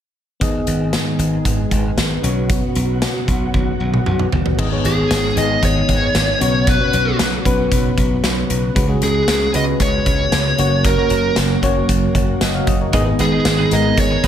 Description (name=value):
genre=1980s-style pop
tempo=115 BPM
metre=4/4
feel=straight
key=unclear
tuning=A4 = 441 Hz
part: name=FM electric piano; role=accompaniment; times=0.4-14.3 s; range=G#2 to F#5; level=-22 LUFS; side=left 3 dB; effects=chorus
part: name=ensemble organ-string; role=sustained chords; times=0.4-14.3 s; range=C#3 to G#4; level=-23 LUFS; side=equal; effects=phaser, ensemble chorus
part: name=glassy slap bass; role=bass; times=0.4-14.3 s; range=F#1 to C#2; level=-21 LUFS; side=equal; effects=none
part: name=big rock drum kit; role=drums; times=0.4-14.3 s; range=crash cymbal, hi-hat, kick drum, snare drum, toms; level=-20 LUFS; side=equal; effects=none
part: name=smooth overdriven lead guitar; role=melody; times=4.9-14.3 s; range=G#4 to D#5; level=-19 LUFS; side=right 2 dB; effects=diffuse ambient delay
part: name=twelve-string electric guitar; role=riff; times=12.9-14.3 s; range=B3 to B4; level=-25 LUFS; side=right 5 dB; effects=wide subtle chorus, diffuse ambient delay
room=moderate plate reverb, RT60 1.1 s, small room ambience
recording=dreamy mix soaked in reverb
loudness=-14 LUFS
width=side -9 dB against mid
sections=0.4-4.6 A section; 4.6-14.3 B section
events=drum fill 3.5-4.6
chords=0.4 G#m; 2.2 Bsus2; 4.6 G#m; 6.4 Bsus2; 8.8 C#7sus4; 10.6 F#; 12.9 G#m